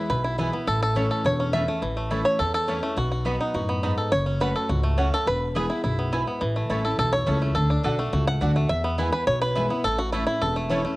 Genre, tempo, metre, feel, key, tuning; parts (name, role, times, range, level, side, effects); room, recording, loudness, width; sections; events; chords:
bluegrass; 209 BPM; 4/4; straight; A major; A4 = 440 Hz
bluegrass banjo; melody; 0.0-11.0 s; E3 to F#5; -25 LUFS; equal
picked steel-string acoustic guitar; accompaniment; 0.0-11.0 s; E2 to F#4; -30 LUFS; left 1 dB; cassette tape
upright bass; bass; 0.1-10.8 s; E1 to F#2; -26 LUFS; equal
mandolin; stabs; 0.4-10.8 s; A3 to B5; -34 LUFS; right 2 dB; cassette tape
light reverb, small room ambience; home recording on cassette; -22 LUFS; side -19 dB against mid
0.0-1.8 A section; 1.8-11.0 A section
five-string banjo solo 0.0-11.0
0.0 E; 0.7 A; 3.0 B; 4.1 F#m; 5.3 E; 6.4 A; 7.6 D; 8.7 E; 9.8 A